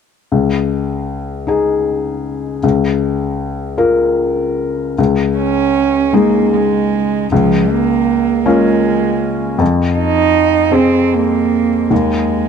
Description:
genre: neoclassical piano and strings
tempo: 52 BPM (dotted quarters)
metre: 6/8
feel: rubato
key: unclear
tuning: A4 = 439 Hz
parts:
  - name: felt-muted upright piano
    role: accompaniment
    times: 0.3-12.5 s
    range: Db2 to Bb4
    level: -14 LUFS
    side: left 4 dB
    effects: none
  - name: warm cello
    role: second line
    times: 5.4-12.5 s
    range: F3 to Eb4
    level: -14 LUFS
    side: right 10 dB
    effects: none
room: light reverb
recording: dark, warm production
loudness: -12 LUFS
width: side -6 dB against mid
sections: 0.3-5.0 A section; 5.0-12.5 B section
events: none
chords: 0.3 Dbsus2; 2.6 Bbm/Db; 5.0 Dbsus2; 7.3 Bbm7/Db; 9.6 Fm7; 11.9 Ab5/Eb

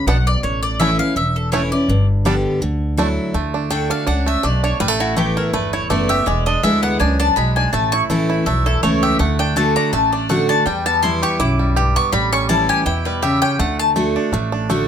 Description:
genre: bluegrass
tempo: 164 BPM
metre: 4/4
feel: swing 54% on 8ths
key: D major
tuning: A4 = 440 Hz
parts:
  - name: mandolin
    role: melody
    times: 0.0-13.9 s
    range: F#4 to D6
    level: -20 LUFS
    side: left 3 dB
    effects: none
  - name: picked steel-string acoustic guitar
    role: accompaniment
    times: 0.0-14.9 s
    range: E2 to G4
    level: -20 LUFS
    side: left 1 dB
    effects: none
  - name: bluegrass banjo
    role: arpeggios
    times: 0.1-14.9 s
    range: G3 to G4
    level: -22 LUFS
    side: right 4 dB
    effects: none
  - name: upright bass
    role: bass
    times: 0.1-14.9 s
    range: E1 to E2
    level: -21 LUFS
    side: equal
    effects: none
room: light reverb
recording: close, detailed microphones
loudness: -15 LUFS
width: side -8 dB against mid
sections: 0.0-3.3 A section; 3.3-14.9 B section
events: mandolin solo 3.3-14.9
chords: 0.4 A; 1.9 G; 2.6 Dadd9; 3.3 D; 4.8 Asus2; 6.3 E7; 7.7 A; 9.2 D; 10.7 Em; 12.1 A7; 13.6 D

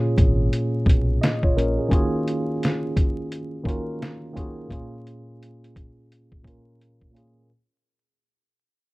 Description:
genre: lo-fi hip hop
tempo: 86 BPM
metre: 4/4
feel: swing 63% on 16ths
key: unclear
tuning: A4 = 440 Hz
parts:
  - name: tine electric piano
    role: accompaniment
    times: 0.0-7.5 s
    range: Bb2 to Eb5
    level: -25 LUFS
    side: equal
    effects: medium stereo tremolo, cassette tape, low-pass filter
  - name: deep dub fingered electric bass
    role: bass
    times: 0.2-1.8 s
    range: Ab1 to Cb2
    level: -22 LUFS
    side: equal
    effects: none
  - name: dusty soul sampler-style drum kit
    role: drums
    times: 0.2-7.4 s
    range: hi-hat, kick drum, snare drum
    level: -21 LUFS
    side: equal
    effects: none
room: moderate small room reverb, RT60 0.5 s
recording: dark, warm production, vinyl crackle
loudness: -20 LUFS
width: side -22 dB against mid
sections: 0.0-7.5 A section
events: fade-out 0.0-7.5; filter sweep on tine electric piano 0.0-7.5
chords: 0.0 Bbm7; 1.9 Ebm11; 4.7 Bbm7

